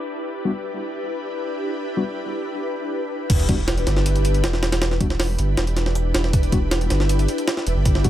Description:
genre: drum and bass, jungle.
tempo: 158 BPM.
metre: 4/4.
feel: straight.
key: E minor.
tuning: A4 = 440 Hz.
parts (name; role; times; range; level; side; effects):
ethereal airy pad; sustained chords; 0.0-8.1 s; D4 to B4; -26 LUFS; left 2 dB; ensemble chorus, built-in reverb.
wind-like tuned noise texture; texture; 0.0-2.9 s; D6; -45 LUFS; right 3 dB; none.
mellow tine electric piano; stabs; 0.5-8.1 s; G3 to F#4; -26 LUFS; left 3 dB; dub echo.
saturated sub bass; bass; 3.3-8.1 s; E1 to G1; -21 LUFS; equal; tube saturation.
jungle sampler-style drum kit; drums; 3.3-8.1 s; crash cymbal, hi-hat, kick drum, snare drum; -22 LUFS; equal; none.
sub drop; sound effects; 3.3-4.8 s; none; -29 LUFS; right 1 dB; none.
room: little or no reverb.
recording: low-pass filter.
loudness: -19 LUFS.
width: side -12 dB against mid.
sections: 0.0-3.3 A section; 3.3-8.1 B section.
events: drop 3.3-8.1; impact 3.3-4.8.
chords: 0.0 Em7.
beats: | 0.26 0.64 1.02 1.40 | 1.78 2.16 2.54 2.92 | 3.30 3.68 4.06 4.44 | 4.82 5.20 5.58 5.96 | 6.34 6.72 7.10 7.47 | 7.86.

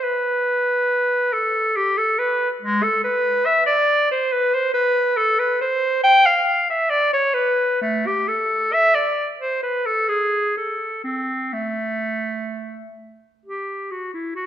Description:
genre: classical, baroque-style fantasia for unaccompanied clarinet.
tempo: 60-71 BPM.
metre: 3/4.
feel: rubato.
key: A minor.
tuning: A4 = 440 Hz.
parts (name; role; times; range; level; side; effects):
bright clarinet; solo; 0.0-14.5 s; G#3 to G5; -18 LUFS; equal; none.
room: moderate recital hall reverb, RT60 1.5 s.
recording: none.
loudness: -18 LUFS.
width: side -10 dB against mid.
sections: 0.0-13.4 A section; 13.4-14.5 A section.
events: none.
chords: none.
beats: | 0.03 0.90 1.76 | 2.62 3.46 4.32 | 5.18 6.04 6.90 | 7.81 8.72 9.62 | 10.57 11.52 12.48 | 13.45 14.36.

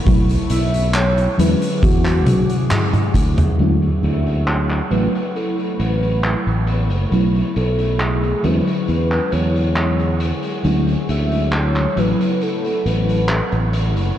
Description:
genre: vaporwave.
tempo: 68 BPM.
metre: 4/4.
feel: straight.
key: A major.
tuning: A4 = 440 Hz.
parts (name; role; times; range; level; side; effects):
FM electric piano with soft pad layer; accompaniment; 0.0-14.2 s; C#3 to E4; -21 LUFS; equal; tremolo, ensemble chorus, cassette tape, tape echo.
warbly tape-like pad; sustained chords; 0.0-14.2 s; A3 to E6; -32 LUFS; right 1 dB; chorus, built-in reverb.
fingered electric bass; bass; 0.1-14.1 s; F#1 to E2; -18 LUFS; equal; none.
kick drum; drums; 0.1-3.3 s; none; -20 LUFS; equal; none.
oversized low-tuned drum kit; drums; 0.1-14.1 s; handclaps, hi-hat, toms; -23 LUFS; equal; low-pass filter on hats, low-pass filter on toms, low-pass filter on snare, low-pass filter on room.
warm velvety synth lead; melody; 0.5-13.7 s; F#4 to E5; -25 LUFS; equal; chorus, cassette tape, tape echo.
room: light reverb.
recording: dark, warm production, cassette tape.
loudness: -15 LUFS.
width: side -11 dB against mid.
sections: 0.0-3.6 A section; 3.6-14.2 B section.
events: drum fill 2.3-3.6; band accent 2.7-3.1.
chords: 0.1 B9sus4; 1.4 E13; 3.6 Dmaj9#11; 4.9 A69; 7.1 B9sus4; 8.4 E13; 10.6 Dmaj9#11; 12.0 A69.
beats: | 0.06 0.94 1.82 2.71 | 3.59 4.47 5.35 6.24 | 7.12 8.00 8.88 9.77 | 10.65 11.53 12.41 13.29 | 14.18.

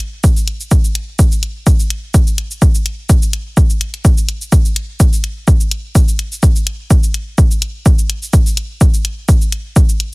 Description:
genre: techno.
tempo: 126 BPM.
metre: 4/4.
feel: swing 54% on 16ths.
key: none.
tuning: none.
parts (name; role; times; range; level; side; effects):
electronic hi-hat and cabasa; drums; 0.0-10.1 s; none; -23 LUFS; left 1 dB; none.
electronic kick drum; drums; 0.2-9.9 s; none; -11 LUFS; equal; none.
room: little or no reverb.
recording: heavily compressed radio sound.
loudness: -11 LUFS.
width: side -28 dB against mid.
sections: 0.0-10.1 A section.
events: none.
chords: none.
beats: 0.24 0.71 1.19 | 1.67 2.14 2.62 3.10 | 3.57 4.05 4.52 5.00 | 5.48 5.95 6.43 6.91 | 7.38 7.86 8.33 8.81 | 9.29 9.76.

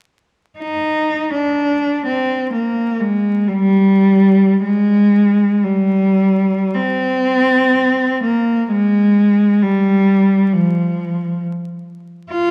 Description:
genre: classical, free, expressive piece for unaccompanied cello.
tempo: 44-70 BPM.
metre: 4/4.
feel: rubato.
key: C minor.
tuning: A4 = 436 Hz.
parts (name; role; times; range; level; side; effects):
rich cello; solo; 0.6-12.5 s; F3 to F4; -15 LUFS; equal; none.
room: wet concert hall reverb, RT60 2.3 s.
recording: dark, warm production, vinyl crackle.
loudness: -15 LUFS.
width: mono.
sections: 0.6-4.6 A section; 4.6-12.5 B section.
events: none.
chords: none.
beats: | 0.59 1.59 2.53 3.49 | 4.65 5.63 6.75 7.75 | 8.70 9.62 10.53 11.44 | 12.31.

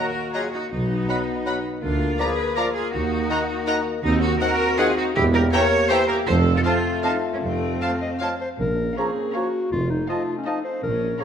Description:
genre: cinematic, playful, whimsical film cue.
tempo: 161 BPM.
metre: 3/4.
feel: straight.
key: Eb minor.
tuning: A4 = 440 Hz.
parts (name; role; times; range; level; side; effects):
rich studio violin section; melody; 0.0-11.2 s; Gb5 to B5; -34 LUFS; left 1 dB; none.
large flute ensemble; second line; 0.0-11.2 s; Gb5 to B5; -32 LUFS; equal; none.
mellow clarinet; second line; 0.0-11.2 s; Db4 to F5; -29 LUFS; left 2 dB; none.
rich chamber violin section; second line; 0.0-11.2 s; C5 to Bb5; -34 LUFS; left 5 dB; none.
warm oboe; second line; 0.0-11.2 s; Db5 to G5; -33 LUFS; equal; none.
rich chamber viola section; accompaniment; 0.0-11.2 s; A3 to Bb4; -30 LUFS; equal; none.
warm bassoon; accompaniment; 0.0-11.2 s; Eb3 to Gb3; -32 LUFS; equal; none.
mellow French horn section; sustained chords; 0.0-11.2 s; A3 to Bb4; -28 LUFS; left 4 dB; none.
clear chamber cello section; bass; 0.0-11.1 s; F2 to C#5; -26 LUFS; right 1 dB; none.
clear chamber double bass section; bass; 0.7-11.1 s; F1 to F2; -26 LUFS; right 2 dB; none.
mellow tuba; bass; 0.7-11.1 s; E1 to Eb2; -28 LUFS; right 3 dB; none.
room: moderate scoring stage reverb, RT60 1.5 s.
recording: none.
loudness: -20 LUFS.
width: side -8 dB against mid.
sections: 0.0-8.6 A section; 8.6-11.2 B section.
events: none.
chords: 0.0 Ebm; 0.7 B; 1.8 Bb/D; 2.9 Ebm; 4.0 Cdim/Eb; 5.2 Edim7; 6.3 F; 8.6 Bbm; 9.7 F7.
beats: 0.34 | 0.72 1.09 1.46 | 1.83 2.20 2.57 | 2.94 3.30 3.67 | 4.04 4.41 4.79 | 5.16 5.53 5.90 | 6.28 6.65 7.04 | 7.43 7.82 8.21 | 8.60 8.97 9.35 | 9.72 10.09 10.46 | 10.83 11.21.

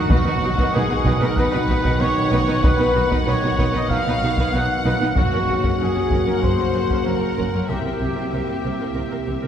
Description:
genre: cinematic, epic orchestral film score.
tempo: 95 BPM.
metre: 4/4.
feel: straight.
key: unclear.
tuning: A4 = 440 Hz.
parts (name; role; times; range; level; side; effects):
clear symphonic violin section; melody; 0.0-9.5 s; E5 to F#5; -31 LUFS; left 5 dB; none.
clear symphonic violin section; second line; 0.0-9.5 s; F#4 to F#5; -30 LUFS; left 3 dB; none.
warm trumpet section; stabs; 0.0-9.5 s; F#4 to F#5; -24 LUFS; right 1 dB; none.
rich symphonic viola section; accompaniment; 0.1-9.5 s; C4 to B4; -29 LUFS; right 2 dB; none.
clear trombone section; sustained chords; 0.1-9.5 s; C3 to Bb3; -29 LUFS; right 2 dB; none.
mellow French horn section; sustained chords; 0.1-9.5 s; Bb3 to Gb4; -26 LUFS; left 2 dB; none.
rich symphonic cello section; bass; 0.1-9.5 s; Gb2 to C3; -26 LUFS; right 2 dB; none.
warm symphonic double bass section; bass; 0.1-9.3 s; Gb1 to C2; -26 LUFS; right 1 dB; none.
solo taiko drums; drums; 0.1-7.5 s; none; -24 LUFS; equal; none.
room: wet cathedral reverb, RT60 4.6 s.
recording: recorded in a church or concert hall.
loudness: -17 LUFS.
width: side -9 dB against mid.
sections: 0.0-9.5 A section.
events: none.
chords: 0.1 B; 5.2 Gb; 7.7 C7.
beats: | 0.11 0.74 1.37 2.00 | 2.63 3.27 3.90 4.53 | 5.16 5.79 6.42 7.06 | 7.69 8.32 8.95.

